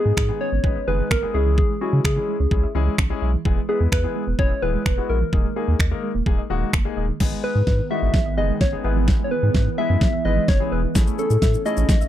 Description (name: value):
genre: dance-pop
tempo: 128 BPM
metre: 4/4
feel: straight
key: G# phrygian from 7.2 s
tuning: A4 = 440 Hz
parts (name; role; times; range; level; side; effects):
- soft struck synth lead; melody; 0.0-12.1 s; F#4 to E5; -25 LUFS; left 1 dB; chorus, tape echo
- warm grand piano; accompaniment; 0.0-11.9 s; G#3 to B4; -29 LUFS; left 11 dB; sidechain pumping
- soft round pluck; arpeggios; 0.1-12.1 s; D#3 to E5; -31 LUFS; right 16 dB; chorus, sidechain pumping, tape echo
- warm sub bass; bass; 0.1-12.0 s; D#1 to C#3; -22 LUFS; equal; sidechain pumping
- pop drum kit; drums; 0.2-12.1 s; crash cymbal, finger snaps, kick drum, shaker, snare drum; -20 LUFS; equal; none
- glassy FM pad; sustained chords; 7.8-12.1 s; D#3 to C#4; -30 LUFS; right 4 dB; ensemble chorus, built-in reverb, sidechain pumping
room: little or no reverb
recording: dry, close 1970s-style studio recording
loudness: -18 LUFS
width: side -12 dB against mid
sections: 0.0-7.2 A section; 7.2-12.1 B section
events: build-up 7.2-12.1; drum fill 7.2-12.1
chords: 0.0 G#m; 1.3 C#m; 3.5 E; 5.3 D#sus4; 7.2 G#m; 8.8 E/G#; 11.0 Amaj7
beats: 0.17 0.64 1.11 | 1.58 2.05 2.52 2.98 | 3.45 3.92 4.39 4.86 | 5.33 5.80 6.27 6.74 | 7.20 7.67 8.14 8.61 | 9.08 9.55 10.02 10.48 | 10.95 11.42 11.89